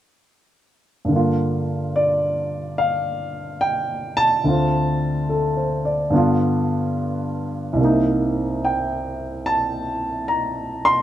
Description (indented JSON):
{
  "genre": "solo jazz",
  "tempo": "72 BPM",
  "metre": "4/4",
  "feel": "swing 68% on 8ths",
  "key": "G minor",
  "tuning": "A4 = 440 Hz",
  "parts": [
    { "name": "warm baby grand piano", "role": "solo", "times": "1.0-11.0 s", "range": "C2 to C6", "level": "-19 LUFS", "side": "equal", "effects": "none" }
  ],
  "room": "light reverb",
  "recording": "none",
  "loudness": "-19 LUFS",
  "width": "side -12 dB against mid",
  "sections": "1.1-11.0 A section",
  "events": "none",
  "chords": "1.1 Gm7; 4.4 Dm7; 6.1 G7; 7.8 Cm7",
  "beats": "| 1.11 1.94 2.78 3.61 | 4.45 5.28 6.12 6.95 | 7.79 8.62 9.45 10.29"
}